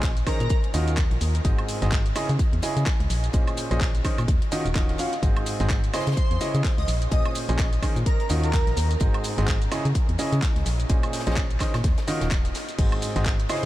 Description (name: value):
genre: piano house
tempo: 127 BPM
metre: 4/4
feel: swing 58% on 16ths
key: Ab mixolydian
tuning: A4 = 440 Hz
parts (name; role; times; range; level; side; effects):
- clear concert grand piano; riff; 0.0-13.6 s; Ab2 to F5; -28 LUFS; right 1 dB; sidechain pumping, diffuse ambient delay
- organ-like FM bass; bass; 0.0-13.7 s; Eb1 to Db3; -25 LUFS; equal; sidechain pumping
- deep reggae drum kit; drums; 0.0-13.7 s; hi-hat, snare drum; -43 LUFS; left 2 dB; none
- electronic kick drum; drums; 0.0-13.4 s; none; -23 LUFS; equal; studio reverb
- garage drum kit; drums; 0.0-13.7 s; crash cymbal, handclaps, hi-hat, shaker, woodblock; -32 LUFS; equal; studio reverb
- airy dreamy lead; melody; 0.3-0.6, 5.9-8.9, 13.5-13.7 s; Bb4 to Eb5; -34 LUFS; equal; chorus, diffuse ambient delay
room: light reverb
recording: none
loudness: -21 LUFS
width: side -15 dB against mid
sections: 0.0-13.7 A section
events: none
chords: 0.0 Bbm11; 0.5 Ebm9; 1.4 Ab7; 2.2 Dbmadd9; 3.1 Bbm11; 4.3 Ebm9; 5.2 Ab7; 5.9 Dbmadd9; 6.9 Bbm11; 8.1 Ebm9; 9.0 Ab7; 9.7 Dbmadd9; 10.7 Bbm11; 11.8 Ebm9; 12.8 Ab7